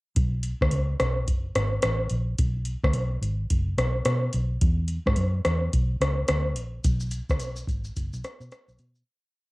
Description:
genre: indie pop, bedroom pop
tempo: 108 BPM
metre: 4/4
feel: swing 60% on 16ths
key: unclear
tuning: A4 = 441 Hz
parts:
  - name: vintage muted fingered electric bass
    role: bass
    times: 0.2-9.0 s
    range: F#1 to B2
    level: -26 LUFS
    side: equal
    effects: none
  - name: soft vintage rhythm box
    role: drums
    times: 0.2-9.1 s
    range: hi-hat, kick drum, rim click, shaker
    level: -26 LUFS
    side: equal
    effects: overdrive, cassette tape
room: little or no reverb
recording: home recording on cassette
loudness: -23 LUFS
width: side -22 dB against mid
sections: 0.2-9.1 A section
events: fade-out 6.8-9.1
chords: none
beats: | 0.17 0.73 1.28 1.84 | 2.39 2.95 3.51 4.06 | 4.62 5.17 5.73 6.29 | 6.85 7.40 7.96 8.52

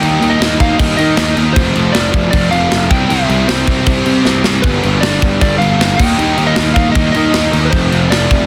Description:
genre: punk rock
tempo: 156 BPM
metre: 4/4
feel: straight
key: unclear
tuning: A4 = 439 Hz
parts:
  - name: lightly driven lead guitar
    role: melody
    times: 0.0-8.5 s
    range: B4 to G5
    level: -21 LUFS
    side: equal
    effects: digital delay
  - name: distorted electric guitar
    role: riff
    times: 0.0-8.5 s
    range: F2 to Eb4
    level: -24 LUFS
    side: equal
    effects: none
  - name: overdriven semi-hollow guitar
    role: riff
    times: 0.0-8.5 s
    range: F2 to Eb4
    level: -22 LUFS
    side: equal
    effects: none
  - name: thick fuzz guitar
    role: riff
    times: 0.0-8.5 s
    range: F2 to F4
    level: -24 LUFS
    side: equal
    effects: none
  - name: fuzz picked electric bass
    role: bass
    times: 0.0-8.5 s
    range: F1 to Eb3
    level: -18 LUFS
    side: equal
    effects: overdrive
  - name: tight metal drum kit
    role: drums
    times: 0.0-8.4 s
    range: crash cymbal, kick drum, snare drum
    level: -17 LUFS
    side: equal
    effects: none
room: light reverb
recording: dense, heavily limited modern master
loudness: -12 LUFS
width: mono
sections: 0.0-8.5 A section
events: drum fill 4.3-4.7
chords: 0.0 Eb; 1.6 F; 2.9 C; 4.7 G; 6.0 Eb; 7.7 F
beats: | 0.03 0.41 0.80 1.18 | 1.57 1.95 2.34 2.72 | 3.11 3.49 3.88 4.26 | 4.65 5.04 5.42 5.81 | 6.19 6.58 6.96 7.35 | 7.74 8.12

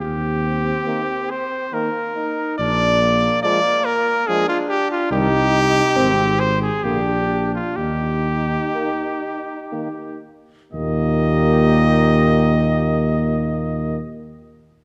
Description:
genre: classical, brass quintet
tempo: 58-72 BPM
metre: 3/4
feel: rubato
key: Eb major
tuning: A4 = 440 Hz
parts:
  - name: clear trumpet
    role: melody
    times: 0.0-14.0 s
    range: F4 to Eb5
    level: -23 LUFS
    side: equal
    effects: none
  - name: mellow flugelhorn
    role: second line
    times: 0.0-14.0 s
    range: Bb3 to G4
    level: -29 LUFS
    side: equal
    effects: none
  - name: dark tuba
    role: bass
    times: 0.0-14.0 s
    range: Ab1 to Eb2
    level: -22 LUFS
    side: equal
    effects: none
  - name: clear trombone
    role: accompaniment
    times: 0.9-14.0 s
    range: Bb2 to F3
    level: -31 LUFS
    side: equal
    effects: none
  - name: warm French horn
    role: accompaniment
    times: 0.9-14.0 s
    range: G3 to C4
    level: -29 LUFS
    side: equal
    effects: none
room: wet scoring stage reverb, RT60 1.8 s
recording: dark, warm production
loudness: -19 LUFS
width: mono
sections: 0.0-10.7 A section; 10.7-13.7 B section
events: slowing down 3.9-10.7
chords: 0.0 Eb; 2.6 Bb7; 5.1 Cm; 6.0 Ab; 6.8 Bb; 7.8 Eb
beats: 0.87 1.74 | 2.59 3.44 4.28 | 5.12 5.96 6.84 | 7.78 8.74 9.73 | 10.74 11.73 12.72

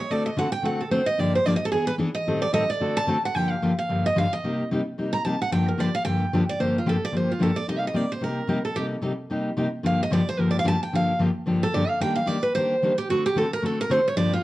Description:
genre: jazz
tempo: 222 BPM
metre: 4/4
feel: swing 58% on 8ths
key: G minor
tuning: A4 = 439 Hz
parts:
  - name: picked steel-string acoustic guitar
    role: melody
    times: 0.0-14.4 s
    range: F4 to Bb5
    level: -25 LUFS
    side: right 2 dB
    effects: none
  - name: picked steel-string acoustic guitar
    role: accompaniment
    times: 0.1-14.4 s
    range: G2 to A4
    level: -24 LUFS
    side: left 1 dB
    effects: none
room: wet club reverb, RT60 0.8 s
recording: worn, warbling old tape, cassette tape, warbly pitch drift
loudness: -22 LUFS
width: side -16 dB against mid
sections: 0.0-3.3 A section; 3.3-14.4 A section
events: steel-string acoustic guitar solo 0.0-14.4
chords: 0.1 D7; 1.2 Gm7; 1.7 E7; 2.3 Am7b5; 2.8 D7; 3.3 Gm7; 4.4 Cm7; 5.5 Gm7; 7.7 Cm7; 9.8 Gm7; 12.0 Ebmaj7; 13.1 D7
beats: | 0.10 0.37 0.64 0.91 | 1.18 1.45 1.72 1.99 | 2.26 2.53 2.81 3.08 | 3.35 3.62 3.89 4.16 | 4.43 4.70 4.97 5.24 | 5.51 5.78 6.05 6.33 | 6.59 6.87 7.14 7.41 | 7.68 7.95 8.22 8.49 | 8.76 9.03 9.30 9.57 | 9.84 10.11 10.38 10.65 | 10.92 11.20 11.46 11.73 | 12.01 12.28 12.55 12.82 | 13.09 13.36 13.63 13.90 | 14.17

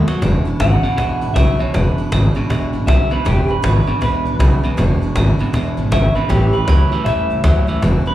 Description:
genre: rockabilly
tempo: 158 BPM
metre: 4/4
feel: swing 62% on 8ths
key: E mixolydian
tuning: A4 = 438 Hz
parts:
  - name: electric guitar through a small old amp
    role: melody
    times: 0.0-8.1 s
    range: G4 to F#5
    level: -22 LUFS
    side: right 1 dB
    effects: slapback echo, tape echo
  - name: picked steel-string acoustic guitar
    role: accompaniment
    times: 0.0-8.1 s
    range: E2 to F#4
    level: -26 LUFS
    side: left 3 dB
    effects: slapback echo
  - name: electric guitar at the edge of break-up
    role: riff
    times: 0.0-8.1 s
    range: E2 to F#3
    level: -20 LUFS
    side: right 2 dB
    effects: none
  - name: upright bass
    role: bass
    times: 0.1-8.1 s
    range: E1 to E2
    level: -16 LUFS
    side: equal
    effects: none
  - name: cajon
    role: drums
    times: 0.1-7.9 s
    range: none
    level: -25 LUFS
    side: equal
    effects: none
room: small room reverb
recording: live gig heard through the venue's PA, club reverb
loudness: -13 LUFS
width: side -13 dB against mid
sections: 0.2-8.1 A section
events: drum fill 0.0; clean electric guitar solo 0.2-8.1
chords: 0.2 E7; 6.3 A7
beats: | 0.22 0.60 0.98 1.36 | 1.74 2.12 2.50 2.88 | 3.26 3.64 4.02 4.40 | 4.78 5.16 5.54 5.92 | 6.30 6.68 7.06 7.44 | 7.82

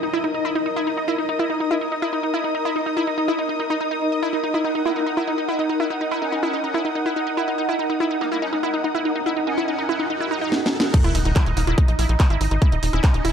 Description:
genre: psychedelic trance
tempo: 143 BPM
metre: 4/4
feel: straight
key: Eb phrygian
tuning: A4 = 442 Hz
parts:
  - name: bubbling stepped-filter texture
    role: sustained chords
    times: 0.0-13.3 s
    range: Eb4 to Gb5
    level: -26 LUFS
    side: right 1 dB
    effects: chorus, built-in reverb, sidechain pumping
  - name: wide unison pluck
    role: riff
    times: 0.0-13.3 s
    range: Eb4 to Eb5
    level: -24 LUFS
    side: right 1 dB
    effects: auto-pan, sidechain pumping, tape echo
  - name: downlifter, riser and impact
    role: sound effects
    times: 0.0-0.9, 9.2-12.6 s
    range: none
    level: -32 LUFS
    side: equal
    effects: none
  - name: dark studio string section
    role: texture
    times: 0.0-10.5 s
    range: Eb4 to Eb6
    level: -27 LUFS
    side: left 1 dB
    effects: sidechain pumping
  - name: metallic wobble bass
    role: second line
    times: 4.9-13.3 s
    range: Bb3 to Db4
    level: -34 LUFS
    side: left 3 dB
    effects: ensemble chorus, cassette tape, sidechain pumping, high-pass filter, tape echo
  - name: techno drum kit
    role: drums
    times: 10.5-13.3 s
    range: crash cymbal, handclaps, hi-hat, snare drum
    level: -25 LUFS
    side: equal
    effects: overdrive, low-pass filter on hats, low-pass filter on snare, low-pass filter on cymbals
  - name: electronic kick drum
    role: drums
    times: 10.9-13.1 s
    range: none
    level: -16 LUFS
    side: equal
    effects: none
  - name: tight sequencer bass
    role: bass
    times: 11.0-13.3 s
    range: Eb1 to Bb1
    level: -21 LUFS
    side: equal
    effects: none
room: moderate digital room reverb, RT60 1.2 s, digital ambience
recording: dark, warm production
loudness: -19 LUFS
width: side -8 dB against mid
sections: 0.0-10.9 A section; 10.9-13.3 B section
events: riser 9.2-10.9; drum fill 10.5-10.9; drop 10.9-13.3; impact 10.9-12.6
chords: 0.0 Eb5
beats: 0.03 0.45 | 0.87 1.29 1.71 2.13 | 2.55 2.97 3.39 3.81 | 4.23 4.64 5.07 5.48 | 5.90 6.32 6.74 7.16 | 7.58 8.00 8.42 8.84 | 9.26 9.68 10.10 10.52 | 10.94 11.36 11.78 12.20 | 12.62 13.04

